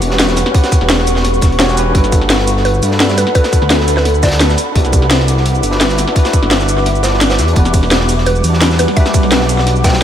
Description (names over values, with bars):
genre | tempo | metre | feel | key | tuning
liquid drum and bass | 171 BPM | 4/4 | straight | unclear | A4 = 440 Hz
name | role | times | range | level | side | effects
overdriven tine electric piano | accompaniment | 0.0-10.0 s | C#4 to C#5 | -20 LUFS | equal | fast tremolo, tape echo
ethereal airy pad | sustained chords | 0.0-10.0 s | G3 to D6 | -19 LUFS | equal | ensemble chorus, built-in reverb
dark detuned saw bass | bass | 0.0-10.0 s | E1 to G2 | -14 LUFS | equal | none
crunchy breakbeat drum kit | drums | 0.0-10.0 s | hi-hat, snare drum | -21 LUFS | equal | high-pass filter on hats, high-pass filter on snare, high-pass filter on room
drum and bass drum kit | drums | 0.0-9.9 s | hi-hat, ride cymbal, shaker, snare drum | -16 LUFS | equal | none
electronic kick drum | drums | 0.5-9.9 s | none | -11 LUFS | equal | none
mallet-like synth pluck | melody | 2.6-4.6, 8.3-10.0 s | B4 to G5 | -20 LUFS | equal | chorus, diffuse ambient delay
room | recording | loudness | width
light reverb | none | -10 LUFS | side -10 dB against mid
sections
0.0-10.0 A section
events
kick drops out 6.9-7.6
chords
0.0 A13 (rootless); 1.9 Gmaj9; 4.6 Cmaj9#11; 7.6 Em9